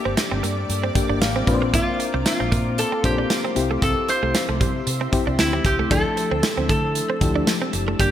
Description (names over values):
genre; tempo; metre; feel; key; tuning
1980s-style pop; 115 BPM; 4/4; swing 55% on 16ths; D minor; A4 = 438 Hz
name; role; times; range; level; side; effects
metal-body resonator slide guitar; melody; 0.0-8.1 s; E4 to C5; -25 LUFS; right 1 dB; digital delay
FM electric piano with tremolo; accompaniment; 0.0-8.1 s; F3 to G5; -26 LUFS; left 5 dB; none
shimmering ambient pad; sustained chords; 0.0-8.1 s; F3 to E6; -31 LUFS; left 1 dB; chorus, built-in reverb
direct-recorded clean electric guitar; riff; 0.1-8.1 s; G3 to D4; -29 LUFS; right 5 dB; analog chorus
vintage muted fingered electric bass; bass; 0.1-8.1 s; F#1 to D3; -26 LUFS; equal; none
modern studio drum kit; drums; 0.2-8.1 s; hi-hat, kick drum, snare drum, tambourine; -23 LUFS; right 1 dB; gated reverb
room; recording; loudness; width
moderate lush hall reverb, RT60 1.8 s; bright 1980s-style digital production; -18 LUFS; side -10 dB against mid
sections
0.0-8.1 A section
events
FM electric piano fill 0.7-1.7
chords
0.0 Gm; 1.5 Bbadd9; 3.6 C; 5.9 Dmadd9